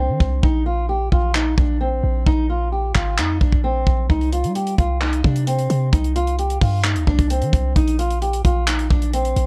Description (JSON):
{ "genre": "hip hop, trap", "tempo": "131 BPM", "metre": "4/4", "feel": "half-time", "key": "C minor", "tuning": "A4 = 440 Hz", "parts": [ { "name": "fingerpicked old ladder-braced acoustic guitar", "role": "melody", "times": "0.0-9.5 s", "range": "C4 to G4", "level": "-25 LUFS", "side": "equal", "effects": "none" }, { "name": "warm 808-style bass", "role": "bass", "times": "0.0-9.5 s", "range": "Ab1 to G3", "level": "-22 LUFS", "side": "equal", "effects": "none" }, { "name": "tight funk drum kit", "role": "drums", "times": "0.2-9.5 s", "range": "handclaps, hi-hat, kick drum", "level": "-22 LUFS", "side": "equal", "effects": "none" } ], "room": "little or no reverb", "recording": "worn, warbling old tape, cassette tape, warbly pitch drift", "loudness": "-19 LUFS", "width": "mono", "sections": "0.0-9.5 A section", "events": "break 0.0-4.1", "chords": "0.4 Bb5; 4.1 Cm; 7.8 Absus2 (rootless)" }